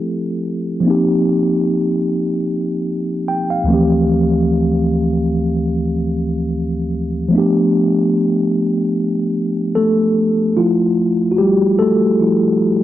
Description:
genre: R&B.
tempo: 74 BPM.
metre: 4/4.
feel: swing 54% on 16ths.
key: unclear.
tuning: A4 = 440 Hz.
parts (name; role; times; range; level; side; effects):
mellow tine electric piano; solo; 0.0-12.8 s; D2 to G5; -14 LUFS; equal; medium stereo tremolo.
room: light reverb, digital ambience.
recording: dry, gritty hardware recording.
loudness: -14 LUFS.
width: side -13 dB against mid.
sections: 0.0-10.6 A section; 10.6-12.8 B section.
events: tine electric piano fill 2.9-4.1; tine electric piano solo 10.6-12.8.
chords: 0.0 Fmaj7; 0.9 Eb69; 3.7 Dm11; 7.3 G9; 10.6 Fmaj7.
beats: 0.04 | 0.85 1.66 2.47 3.28 | 4.09 4.91 5.72 6.53 | 7.34 8.15 8.96 9.77 | 10.58 11.39 12.20.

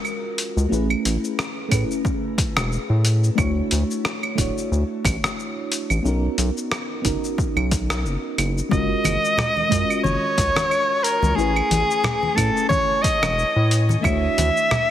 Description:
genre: sunset chillout.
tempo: 90 BPM.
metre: 4/4.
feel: swing 56% on 16ths.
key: unclear.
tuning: A4 = 440 Hz.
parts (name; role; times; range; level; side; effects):
mellow FM electric piano; accompaniment; 0.0-14.9 s; G#3 to G#5; -26 LUFS; moving between left 4 dB and right 5 dB; chorus, phaser, auto-pan, ping-pong delay, shimmer reverb.
dusty soul sampler-style drum kit; drums; 0.0-14.9 s; claves, hi-hat, rim click, shaker; -26 LUFS; equal; studio reverb.
round analog bass; bass; 0.6-14.5 s; D1 to A2; -21 LUFS; equal; none.
electronic kick drum; drums; 1.7-14.2 s; none; -25 LUFS; equal; overdrive, studio reverb.
clear soprano saxophone; melody; 8.7-14.9 s; G#4 to E5; -20 LUFS; equal; ping-pong delay, shimmer reverb.
congas; percussion; 9.0-14.9 s; none; -28 LUFS; left 2 dB; none.
room: moderate scoring stage reverb, RT60 1.9 s, digital ambience.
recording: heavily compressed radio sound, multiband compression.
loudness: -18 LUFS.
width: side -11 dB against mid.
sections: 0.0-14.9 A section.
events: none.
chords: 0.0 F#maj9; 0.7 Amaj9; 3.4 Dmaj9; 6.0 Bmaj9; 8.7 F#maj9; 11.4 Amaj9; 14.0 Dmaj9.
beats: 0.05 | 0.71 1.38 2.05 2.71 | 3.38 4.05 4.71 5.38 | 6.05 6.71 7.38 8.05 | 8.71 9.38 10.05 10.71 | 11.38 12.05 12.71 13.38 | 14.05 14.71.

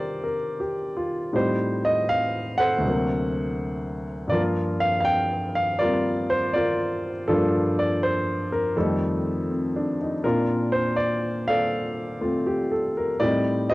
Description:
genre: solo jazz.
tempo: 81 BPM.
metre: 4/4.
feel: swing 68% on 8ths.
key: G minor, Bb major from 10.2 s.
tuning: A4 = 439 Hz.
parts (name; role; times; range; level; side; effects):
warm baby grand piano; solo; 0.0-13.7 s; D2 to G5; -22 LUFS; equal; cassette tape.
room: light reverb.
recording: home recording on cassette.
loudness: -22 LUFS.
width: side -19 dB against mid.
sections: 0.0-10.2 A section; 10.2-13.7 B section.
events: none.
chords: 0.0 Cm9; 1.3 Am7b5; 2.8 D7b13; 4.3 Gm7; 8.8 F9; 10.2 Bbmaj9; 13.2 Am7b5.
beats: 0.60 | 1.34 2.09 2.83 3.57 | 4.31 5.05 5.80 6.54 | 7.28 8.02 8.76 9.50 | 10.24 10.98 11.72 12.46 | 13.20.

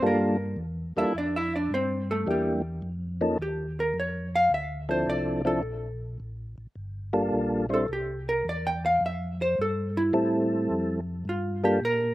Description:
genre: jazz.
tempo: 107 BPM.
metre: 4/4.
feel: swing 68% on 8ths.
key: unclear.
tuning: A4 = 442 Hz.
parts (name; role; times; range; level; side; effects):
percussive tonewheel organ; melody; 0.0-11.8 s; F3 to C5; -25 LUFS; equal; slow rotary speaker, chorus vibrato.
vintage hollow-body jazz guitar; accompaniment; 0.0-12.1 s; G3 to G5; -27 LUFS; equal; slapback echo.
mellow tonewheel organ; bass; 0.0-12.1 s; G1 to Bb2; -33 LUFS; equal; chorus vibrato, slow rotary speaker.
room: little or no reverb.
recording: recorded outdoors, with no room sound.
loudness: -25 LUFS.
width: side -16 dB against mid.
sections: 0.0-12.1 A section.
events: hollow-body jazz guitar solo 0.0-12.1.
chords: 0.0 Gm9; 2.3 Em7b5; 3.4 Ebsus2; 4.5 Dm9; 6.8 Gm7; 7.9 C; 9.0 Fmaj9; 11.3 Gm7.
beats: | 0.02 0.59 1.15 1.71 | 2.27 2.83 3.39 3.96 | 4.52 5.08 5.64 6.20 | 6.76 7.33 7.89 8.45 | 9.01 9.57 10.13 10.69 | 11.26 11.82.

